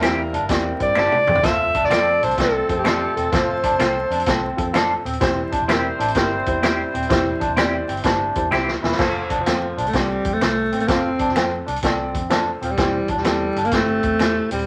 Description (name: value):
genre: uptempo 1960s-style soul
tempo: 127 BPM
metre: 4/4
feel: swing 66% on 8ths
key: F major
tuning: A4 = 439 Hz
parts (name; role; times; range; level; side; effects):
- mellow horn section; second line; 0.0-8.8 s; F3 to C5; -30 LUFS; equal; none
- dark upright piano; accompaniment; 0.0-14.5 s; E3 to D5; -29 LUFS; equal; none
- electric guitar through a small old amp; riff; 0.0-14.6 s; C4 to F4; -28 LUFS; equal; none
- semi-hollow electric guitar; stabs; 0.0-8.7 s; C4 to C5; -26 LUFS; equal; tremolo
- vintage muted fingered electric bass; bass; 0.0-14.6 s; Eb1 to G2; -33 LUFS; equal; none
- vintage drum kit; drums; 0.0-14.7 s; crash cymbal, hi-hat, kick drum, snare drum, toms; -25 LUFS; equal; none
- finger snap; percussion; 0.0-14.3 s; none; -34 LUFS; equal; none
- warm alto saxophone; melody; 0.8-4.7, 8.9-14.7 s; E3 to E5; -23 LUFS; equal; none
room: moderate small room reverb, RT60 0.5 s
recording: vinyl crackle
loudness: -20 LUFS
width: mono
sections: 0.0-9.0 A section; 9.0-14.7 B section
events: drum fill 1.0-1.4, 8.5-9.0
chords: 0.0 C; 1.4 F; 5.2 C; 9.0 F; 12.8 C